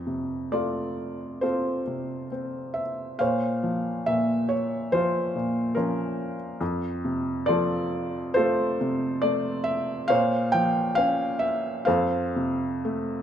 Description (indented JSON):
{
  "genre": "classical, lyrical solo piano",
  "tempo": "60-73 BPM",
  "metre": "4/4",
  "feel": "rubato",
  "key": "F major",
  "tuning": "A4 = 441 Hz",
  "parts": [
    { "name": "felt-muted upright piano", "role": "solo", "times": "0.0-13.2 s", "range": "F2 to G5", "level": "-24 LUFS", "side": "equal", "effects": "none" }
  ],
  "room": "light reverb",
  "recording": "minimal, uncompressed stereo recording",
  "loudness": "-24 LUFS",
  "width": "side -9 dB against mid",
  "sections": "0.0-13.2 A section",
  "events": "none",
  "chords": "0.0 F; 3.2 Bbmadd9; 6.6 F; 10.1 Bbmadd9; 11.9 F"
}